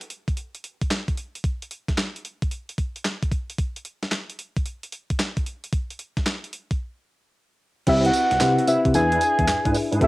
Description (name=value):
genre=R&B, new jack swing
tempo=112 BPM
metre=4/4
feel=swing 66% on 16ths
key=unclear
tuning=A4 = 440 Hz
part: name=crisp 8-bit digital drum machine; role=drums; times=0.0-10.1 s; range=crash cymbal, handclaps, hi-hat, kick drum, snare drum, tambourine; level=-25 LUFS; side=equal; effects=overdrive, cassette tape
part: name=soft octave-layered synth lead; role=melody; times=7.9-10.1 s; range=E5 to G#5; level=-21 LUFS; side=equal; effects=chorus, cassette tape
part: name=FM electric piano with tremolo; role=accompaniment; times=7.9-10.1 s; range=C4 to F#5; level=-23 LUFS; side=left 3 dB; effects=cassette tape
part: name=tonewheel organ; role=stabs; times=7.9-10.1 s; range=C4 to B4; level=-26 LUFS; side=right 2 dB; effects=chorus vibrato, slow rotary speaker, cassette tape
part: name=tine electric piano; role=bass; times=7.9-10.1 s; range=C2 to C3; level=-24 LUFS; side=equal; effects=none
room=light reverb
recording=home recording on cassette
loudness=-22 LUFS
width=side -18 dB against mid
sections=0.0-7.9 A section; 7.9-10.1 B section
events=break 6.8-7.9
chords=0.0 N.C.; 7.9 Cmaj7; 8.9 E7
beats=0.37 0.91 | 1.44 1.98 2.51 3.05 | 3.58 4.12 4.66 5.19 | 5.73 6.26 6.80 7.33 | 7.87 8.40 8.94 9.48 | 10.01